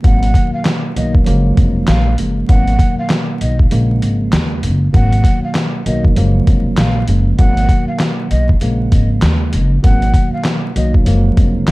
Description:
hip hop, boom-bap hip-hop; 98 BPM; 4/4; swing 61% on 16ths; G# dorian; A4 = 440 Hz
breathy mellow silver concert flute; melody; 0.0-11.7 s; D#5 to F#5; -25 LUFS; equal; high-pass filter, low-pass filter, ping-pong delay
mellow tine electric piano; accompaniment; 0.0-11.7 s; F#2 to A#3; -19 LUFS; equal; medium stereo tremolo, high-pass filter, low-pass filter
upright bass; bass; 0.0-11.7 s; E#1 to D#2; -15 LUFS; equal
boom bap sampler-style drum kit; drums; 0.0-11.7 s; handclaps, hi-hat, kick drum, snare drum; -13 LUFS; equal
digital ambience; dark, warm production, vinyl crackle; -11 LUFS; side -20 dB against mid
0.0-11.7 A section
0.0 G#m7; 1.3 F#maj7; 2.5 G#m7; 3.7 A#m7; 4.9 G#m7; 6.2 F#maj7; 7.4 G#m7; 8.6 A#m7; 9.8 G#m7; 11.1 F#maj7
| 0.04 0.66 1.27 1.88 | 2.49 3.10 3.72 4.33 | 4.94 5.55 6.17 6.78 | 7.39 8.00 8.62 9.23 | 9.84 10.45 11.06 11.68

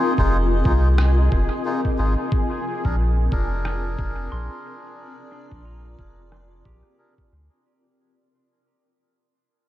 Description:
ambient dub; 90 BPM; 4/4; swing 59% on 16ths; A4 = 440 Hz
granular cloud pad; sustained chords; 0.0-7.7 s; C4 to Eb5; -27 LUFS; left 2 dB; built-in reverb
pedal steel guitar; arpeggios; 0.0-0.3, 4.3-8.3 s; D4 to C6; -43 LUFS; right 2 dB
melodica; stabs; 0.0-7.1 s; D4 to Bb4; -29 LUFS; left 2 dB; low-pass filter, dub echo
bubbling stepped-filter texture; texture; 0.0-7.7 s; Ab4; -34 LUFS; right 2 dB; chorus, built-in reverb
soft dub sub bass; bass; 0.2-7.5 s; F1 to D2; -20 LUFS; equal
electronic kick drum; drums; 0.2-7.3 s; -23 LUFS; equal
electronic rim click; drums; 1.0-6.5 s; -34 LUFS; equal; low-pass filter on hats, low-pass filter on snare, low-pass filter on room, dub echo
digital ambience; -19 LUFS; side -14 dB against mid
0.0-7.7 A section
fade-out 0.0-7.7; filter sweep on drum 0.0-7.7
0.0 Fm7; 2.3 Bb7
0.32 0.98 1.65 | 2.32 2.98 3.65 4.32 | 4.98 5.65 6.32 6.98

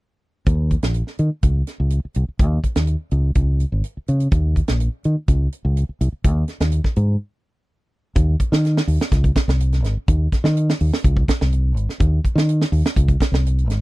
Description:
afrobeat; 125 BPM; 4/4; straight; A4 = 436 Hz
fingered electric bass; bass; 0.5-13.8 s; Ab1 to Eb3; -17 LUFS; equal
tight funk drum kit; drums; 0.5-13.8 s; hi-hat, kick drum, snare drum; -20 LUFS; equal
little or no reverb; dry, close 1970s-style studio recording; -17 LUFS; side -20 dB against mid
0.5-8.2 A section; 8.2-13.8 B section
break 7.2-8.2
| 0.47 0.95 1.43 1.92 | 2.40 2.88 3.36 3.84 | 4.33 4.81 5.29 5.77 | 6.25 6.73 7.21 7.69 | 8.17 8.65 9.13 9.61 | 10.09 10.57 11.05 11.53 | 12.01 12.49 12.97 13.45

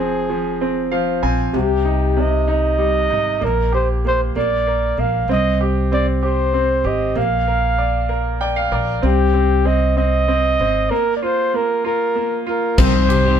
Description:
six-eight pop ballad; 64 BPM (dotted quarters); 6/8; straight; A4 = 440 Hz
mellow flugelhorn; melody; 0.0-13.4 s; G4 to F5; -19 LUFS; equal
bright upright piano; accompaniment; 0.0-13.4 s; C3 to Ab5; -21 LUFS; right 2 dB
upright bass; bass; 0.0-13.4 s; F1 to C2; -20 LUFS; equal
fingerpicked steel-string acoustic guitar; arpeggios; 12.8-13.4 s; C3 to G4; -23 LUFS; equal
huge arena drum kit; drums; 12.8-13.2 s; crash cymbal, kick drum, ride cymbal; -17 LUFS; left 1 dB
light reverb; band playing live in one room; -16 LUFS; side -8 dB against mid
0.0-12.8 A section
upright piano fill 0.6-1.5, 8.1-9.0; break 10.9-12.8
0.0 Fm; 1.5 Cm; 3.4 Gmadd11/Bb; 4.4 Bb; 5.3 C5; 7.2 Bb; 9.0 Cm; 10.9 Bb5; 12.8 Cm
0.60 | 1.54 2.48 | 3.42 4.35 | 5.29 6.23 | 7.17 8.10 | 9.04 9.97 | 10.91 11.84 | 12.78

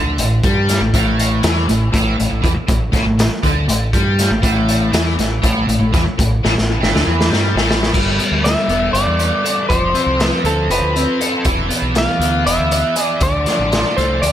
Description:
psychedelic rock; 239 BPM (eighths); 7/8; straight; A minor; A4 = 440 Hz
biting overdriven guitar; riff; 0.0-14.3 s; G2 to A4; -18 LUFS; equal; rotary speaker, dub echo
growling fingered electric bass; bass; 0.0-14.3 s; E1 to G2; -19 LUFS; equal; overdrive
raw garage drum kit; drums; 0.2-14.3 s; crash cymbal, hi-hat, kick drum, snare drum; -18 LUFS; equal; dub echo
electric slide guitar; melody; 8.4-14.3 s; A4 to F5; -19 LUFS; equal; dub echo
light reverb, studio reverb; echo-heavy mix; -13 LUFS; side -11 dB against mid
0.0-7.9 A section; 7.9-14.3 B section
drum fill 6.4-7.9
0.0 A5; 7.9 Gadd9; 9.7 F; 11.5 E; 13.2 Dm
0.18 0.43 0.68 | 0.93 1.18 1.43 1.68 1.93 2.18 2.43 | 2.68 2.93 3.18 3.43 3.68 3.93 4.18 | 4.43 4.68 4.93 5.18 5.43 5.68 5.93 | 6.18 6.43 6.68 6.93 7.18 7.43 7.68 | 7.93 8.19 8.44 8.69 8.94 9.19 9.44 | 9.69 9.95 10.20 10.45 10.70 10.95 11.21 | 11.46 11.71 11.96 12.21 12.46 12.72 12.97 | 13.22 13.47 13.72 13.98 14.23

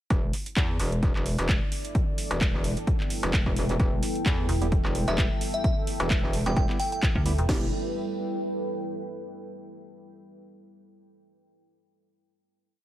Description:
bass house; 130 BPM; 4/4; swing 55% on 16ths; E minor; A4 = 441 Hz
deep dark ambient pad; sustained chords; 2.1-7.7 s; G3 to B4; -36 LUFS; equal; chorus, built-in reverb, sidechain pumping
metallic wobble bass; bass; 0.1-7.7 s; E1 to E2; -28 LUFS; equal; chorus, sidechain pumping
garage drum kit; drums; 0.1-7.5 s; handclaps, hi-hat; -33 LUFS; right 1 dB; overdrive
house drum kit; drums; 0.1-7.6 s; crash cymbal, kick drum, snare drum; -26 LUFS; equal; overdrive
deep dark ambient pad; texture; 1.3-9.3 s; E4 to G5; -36 LUFS; right 2 dB; chorus, built-in reverb, sidechain pumping
metallic FM bass; bass; 4.5-7.5 s; E1 to D2; -25 LUFS; equal; sidechain pumping
percussive organ stab; stabs; 4.6-7.7 s; G3 to G4; -36 LUFS; right 3 dB; chorus, cassette tape, sidechain pumping, dub echo
glassy synth bell; melody; 5.1-7.0 s; E5 to G5; -33 LUFS; equal; chorus, dub echo
little or no reverb; -24 LUFS; side -13 dB against mid
0.1-7.5 drop; 7.5-9.3 final chord
drop 0.1-7.5
0.1 Em
| 0.10 0.56 1.03 1.49 | 1.95 2.41 2.87 3.33 | 3.80 4.26 4.72 5.18 | 5.64 6.10 6.57 7.03 | 7.49 7.95 8.41 8.87

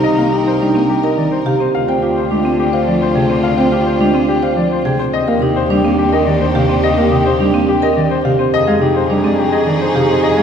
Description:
classical, minimalist pattern music; 106 BPM; 3/4; straight; A4 = 441 Hz
clear baby grand piano; melody; 0.0-10.4 s; G4 to G5; -18 LUFS; left 6 dB
mellow hollow wooden-headed alto flute; second line; 0.0-10.4 s; Eb4 to Ab4; -21 LUFS; equal
rich studio violin section; sustained chords; 0.0-10.4 s; D4 to Bb4; -23 LUFS; left 2 dB
marimba with medium hard mallets; arpeggios; 0.0-10.4 s; C4 to C5; -18 LUFS; right 6 dB
rich cello; bass; 0.0-10.4 s; C2 to F2; -21 LUFS; right 1 dB
dark bass clarinet; accompaniment; 0.2-10.4 s; C3 to C4; -19 LUFS; equal
wet church reverb, RT60 3.5 s; recorded in a church or concert hall; -12 LUFS; side -7 dB against mid
0.0-10.4 A section
0.0 Cm7; 1.7 Dm7b5; 5.1 Ebmaj9; 8.5 Fm9
| 0.04 0.61 1.17 | 1.74 2.31 2.87 | 3.44 4.00 4.57 | 5.14 5.70 6.27 | 6.83 7.40 7.97 | 8.53 9.10 9.66 | 10.23

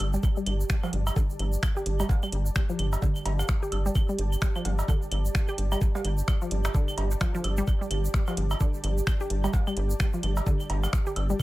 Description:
minimal techno; 129 BPM; 4/4; swing 59% on 16ths; A4 = 443 Hz
rubbery square bass; bass; 0.0-11.3 s; G1; -26 LUFS; equal; sidechain pumping
garage drum kit; drums; 0.0-11.3 s; finger snaps, hi-hat; -34 LUFS; equal; studio reverb, tape echo
claves, woodblock and cowbell; percussion; 0.0-11.4 s; -37 LUFS; right 2 dB; studio reverb, analog delay
ethereal airy pad; texture; 0.0-11.4 s; G4 to A5; -37 LUFS; right 2 dB; ensemble chorus, built-in reverb, tremolo, sidechain pumping
resonant blip pluck; riff; 0.1-11.3 s; D3 to G4; -34 LUFS; equal; chorus, sidechain pumping, analog delay
egg shaker; percussion; 0.1-11.4 s; -43 LUFS; right 3 dB
electronic kick drum; drums; 0.2-11.4 s; -25 LUFS; equal; studio reverb
little or no reverb; echo-heavy mix; -24 LUFS; side -18 dB against mid
0.0-11.4 A section
0.0 G5
| 0.23 0.70 1.16 1.63 | 2.09 2.56 3.02 3.49 | 3.95 4.42 4.88 5.35 | 5.81 6.28 6.74 7.21 | 7.67 8.14 8.60 9.07 | 9.53 10.00 10.46 10.93 | 11.39

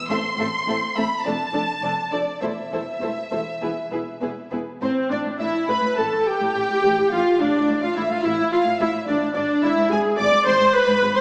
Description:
quick classical-period movement for string orchestra; 99-109 BPM; 4/4; rubato; A4 = 440 Hz
clear studio violin section; melody; 0.0-11.2 s; C5 to D6; -30 LUFS; equal
rich studio violin section; second line; 0.1-11.2 s; G#4 to D6; -30 LUFS; equal
rich studio viola section; accompaniment; 0.1-11.2 s; A3 to D5; -23 LUFS; equal
warm studio cello section; bass; 0.1-11.2 s; E2 to A2; -34 LUFS; equal
warm studio double bass section; bass; 0.1-11.1 s; E1 to A1; -39 LUFS; equal
wet scoring stage reverb, RT60 1.6 s; small speaker sound; -22 LUFS; mono
0.0-4.8 A section; 4.8-11.2 B section
0.1 Am; 1.3 Dm/F; 2.4 Am/E; 3.6 E5; 4.8 Dmadd9/A; 9.4 E7b13/G#
| 0.10 0.68 1.25 1.83 | 2.42 3.02 3.62 4.22 | 4.82 5.40 5.97 6.55 | 7.12 7.68 8.24 8.80 | 9.36 9.91 10.47 11.03

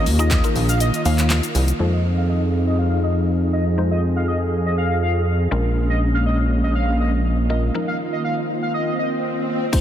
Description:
dance-pop; 121 BPM; 4/4; straight; F minor; A4 = 440 Hz
octave-doubled lead; melody; 0.0-9.1 s; Eb5 to F5; -26 LUFS; left 1 dB; chorus, phaser, low-pass filter, ping-pong delay
mallet-like synth pluck; accompaniment; 0.0-9.8 s; F3 to C5; -31 LUFS; left 4 dB; chorus, sidechain pumping, low-pass filter
sweeping resonant pad; sustained chords; 0.0-9.7 s; Eb3 to Ab4; -25 LUFS; right 1 dB; lush chorus, sidechain pumping, low-pass filter
chorused synth bass; bass; 0.0-7.7 s; Bb1 to F2; -19 LUFS; equal; sidechain pumping
pop drum kit; drums; 0.1-1.8, 9.7-9.8 s; crash cymbal, handclaps, hi-hat, kick drum, shaker, snare drum; -23 LUFS; equal
swell; sound effects; 8.4-9.7 s; -28 LUFS; left 1 dB
moderate huge ambient reverb, RT60 7.1 s; dreamy mix soaked in reverb; -18 LUFS; side -10 dB against mid
0.0-1.8 A section; 1.8-9.7 B section
drop 0.0-1.8; kick muted 0.8-1.8; filter sweep 1.8-9.7; break 7.7-9.7; swell 8.4-9.7
0.0 Ebsus2; 1.8 Fm7; 5.5 Bbm7; 7.7 Ebsus2
0.31 0.81 1.30 | 1.80 2.29 2.79 3.28 | 3.78 4.28 4.77 5.27 | 5.76 6.26 6.75 7.25 | 7.75 8.24 8.74 9.23 | 9.73

